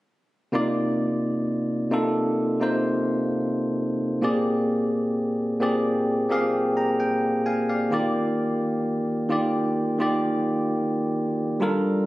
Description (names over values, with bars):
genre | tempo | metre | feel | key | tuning
R&B | 65 BPM | 4/4 | straight | C minor | A4 = 440 Hz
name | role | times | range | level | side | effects
bell-like tine electric piano | accompaniment | 0.5-12.1 s | Bb2 to Bb5 | -22 LUFS | equal | none
room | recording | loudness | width
light reverb, digital ambience | recorded on a phone in the room, studio reverb, compression | -22 LUFS | side -17 dB against mid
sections
0.5-12.1 A section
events
none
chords
0.5 Cm11; 4.2 Bb13; 7.9 Ebmaj9